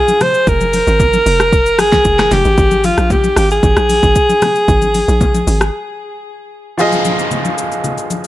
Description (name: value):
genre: amapiano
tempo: 114 BPM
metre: 4/4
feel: straight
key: F minor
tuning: A4 = 440 Hz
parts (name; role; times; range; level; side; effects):
- bright alto saxophone; melody; 0.0-6.2 s; F4 to C5; -13 LUFS; equal; ping-pong delay
- smooth R&B drum kit; drums; 0.1-8.3 s; hi-hat, kick drum, rim click, shaker, snare drum; -16 LUFS; equal; vintage 12-bit sampler grit
- congas; percussion; 0.1-8.2 s; none; -22 LUFS; left 3 dB; none
- hollow log drum bass; bass; 0.5-5.7 s; F1 to Bb1; -16 LUFS; equal; none
- clear grand piano; accompaniment; 6.8-8.3 s; F3 to Eb5; -16 LUFS; right 1 dB; none
- downlifter; sound effects; 6.8-8.3 s; none; -20 LUFS; equal; none
room: light reverb, small room ambience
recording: none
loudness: -10 LUFS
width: side -15 dB against mid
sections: 0.0-6.8 A section; 6.8-8.3 B section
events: drop 0.0-6.8; break 5.7-6.8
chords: 0.0 Fm; 2.6 Absus2; 6.8 Fm7